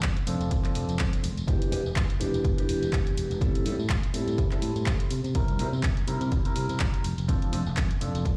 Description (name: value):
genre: filtered disco house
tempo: 124 BPM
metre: 4/4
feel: swing 56% on 16ths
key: A minor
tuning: A4 = 440 Hz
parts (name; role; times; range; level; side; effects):
- fingered electric bass; bass; 0.0-8.4 s; E1 to C3; -33 LUFS; equal; sidechain pumping, low-pass filter
- electronic kick drum; drums; 0.0-8.4 s; none; -29 LUFS; equal; none
- punchy analog drum machine; drums; 0.0-8.4 s; handclaps, hi-hat; -38 LUFS; equal; sidechain pumping on hats
- tambourine; percussion; 0.0-8.4 s; none; -51 LUFS; equal; sidechain pumping on perc, low-pass filter on perc
- warm grand piano; accompaniment; 0.3-8.4 s; E3 to Bb4; -34 LUFS; equal; phaser, vintage 12-bit sampler grit, sidechain pumping, low-pass filter
room: light reverb, digital ambience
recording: played on a big sound system in a bare room, large studio reverb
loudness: -27 LUFS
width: mono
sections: 0.0-8.4 A section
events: none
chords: 0.0 F6; 1.2 Em7; 3.4 Am7; 5.1 C7; 7.0 F6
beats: 0.03 0.51 0.99 | 1.48 1.96 2.45 2.93 | 3.42 3.90 4.38 4.87 | 5.35 5.83 6.32 6.80 | 7.29 7.77 8.25